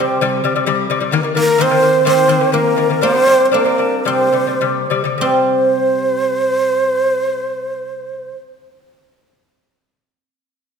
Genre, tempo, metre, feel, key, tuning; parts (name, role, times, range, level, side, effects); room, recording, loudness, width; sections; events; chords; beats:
mongolian traditional, Mongolian folk; 99-132 BPM; 4/4; straight; C yu mode; A4 = 440 Hz
breathy mellow shakuhachi; melody; 0.0-8.3 s; Bb4 to C5; -16 LUFS; right 2 dB
guzheng; second line; 0.0-8.3 s; Bb3 to G4; -18 LUFS; right 1 dB
lute; arpeggios; 0.0-8.4 s; C3 to D4; -18 LUFS; left 5 dB
wet scoring stage reverb, RT60 1.6 s; -13 LUFS; side -6 dB against mid
0.0-5.2 A section; 5.2-10.1 B section
slowing down 1.1-5.2
0.0 C5; 1.1 Eb5; 3.0 G5; 4.1 C5
0.23 0.68 | 1.14 1.60 2.06 2.54 | 3.02 3.53 4.06 4.62 | 5.21 5.81 6.42 7.03 | 7.63 8.24